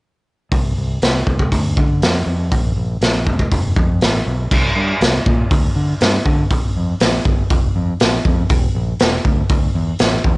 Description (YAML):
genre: indie rock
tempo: 120 BPM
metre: 4/4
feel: straight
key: C mixolydian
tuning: A4 = 440 Hz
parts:
  - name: growling fingered electric bass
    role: bass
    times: 0.5-10.4 s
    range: E1 to D3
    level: -20 LUFS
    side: equal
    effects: overdrive
  - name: raw garage drum kit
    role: drums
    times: 0.5-10.4 s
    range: crash cymbal, hi-hat, kick drum, snare drum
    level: -15 LUFS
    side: equal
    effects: cassette tape
room: little or no reverb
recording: home recording on cassette, nothing above 11.0 kHz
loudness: -14 LUFS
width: side -25 dB against mid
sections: 0.5-4.5 A section; 4.5-10.4 B section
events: none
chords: none